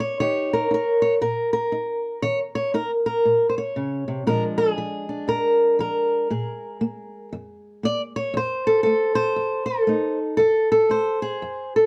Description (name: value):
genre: acoustic country blues, solo or duo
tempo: 118 BPM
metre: 4/4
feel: swing 61% on 8ths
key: unclear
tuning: A4 = 439 Hz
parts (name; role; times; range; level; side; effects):
- fingerpicked old ladder-braced acoustic guitar; solo; 0.0-11.9 s; F2 to D5; -22 LUFS; equal; none
room: light reverb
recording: dark, warm production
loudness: -22 LUFS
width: mono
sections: 0.0-11.9 A section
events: none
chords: 0.2 Eb7(no3); 4.3 Bb7; 8.3 F7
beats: | 0.20 0.71 1.22 1.73 | 2.24 2.75 3.25 3.76 | 4.27 4.78 5.29 5.80 | 6.31 6.82 7.33 7.84 | 8.35 8.86 9.37 9.88 | 10.39 10.91 11.42